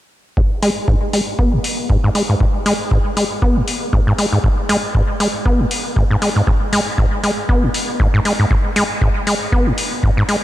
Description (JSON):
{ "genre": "acid house", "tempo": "118 BPM", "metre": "4/4", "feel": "swing 56% on 16ths", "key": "G# minor", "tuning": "A4 = 440 Hz", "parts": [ { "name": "acid bass, saw", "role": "riff", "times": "0.4-10.4 s", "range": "G#2 to B3", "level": "-17 LUFS", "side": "equal", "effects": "analog delay" }, { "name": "electronic kick drum", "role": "drums", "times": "0.4-10.1 s", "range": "none", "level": "-17 LUFS", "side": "equal", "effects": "none" }, { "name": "electronic hi-hat", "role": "drums", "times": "0.6-10.4 s", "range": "none", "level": "-24 LUFS", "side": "left 3 dB", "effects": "none" } ], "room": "moderate huge ambient reverb, RT60 4.5 s", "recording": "dreamy mix soaked in reverb", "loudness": "-14 LUFS", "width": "side -14 dB against mid", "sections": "0.4-10.4 A section", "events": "filter sweep on acid bass 0.4-10.4", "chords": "none", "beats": "| 0.37 0.88 1.39 1.90 | 2.40 2.91 3.42 3.93 | 4.44 4.95 5.46 5.96 | 6.47 6.98 7.49 8.00 | 8.51 9.02 9.52 10.03" }